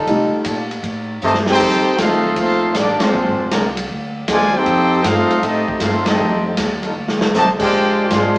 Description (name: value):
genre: jazz, big band swing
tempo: 157 BPM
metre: 4/4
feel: swing 67% on 8ths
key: F major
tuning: A4 = 439 Hz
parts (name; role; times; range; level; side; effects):
- warm upright piano; accompaniment; 0.0-1.6 s; G3 to Eb4; -21 LUFS; equal; none
- warm trombone section; sustained chords; 0.0-3.7, 6.1-6.9 s; G3 to Bb4; -24 LUFS; equal; none
- upright bass; bass; 0.0-8.4 s; F1 to C3; -26 LUFS; equal; none
- swinging big-band drum kit; drums; 0.1-8.4 s; crash cymbal, hi-hat, kick drum, ride cymbal, snare drum; -20 LUFS; equal; none
- clear trumpet section; melody; 1.2-8.4 s; Ab3 to A5; -17 LUFS; equal; none
- bright trombone section; second line; 1.2-8.4 s; C3 to G4; -18 LUFS; equal; none
room: wet stone room reverb, RT60 1.0 s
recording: band playing live in one room, small speaker sound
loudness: -14 LUFS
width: side -25 dB against mid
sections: 0.0-1.6 A section; 1.6-8.4 B section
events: upright piano solo 0.0-1.6; drum fill 1.2-1.6, 7.0-7.3; band accent 2.9, 6.0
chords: 0.0 F9; 3.1 Bb9; 4.7 F9; 7.7 Bb9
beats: | 0.08 0.46 0.84 1.22 | 1.61 1.99 2.37 2.75 | 3.14 3.52 3.90 4.29 | 4.67 5.05 5.43 5.82 | 6.20 6.58 6.96 7.35 | 7.73 8.11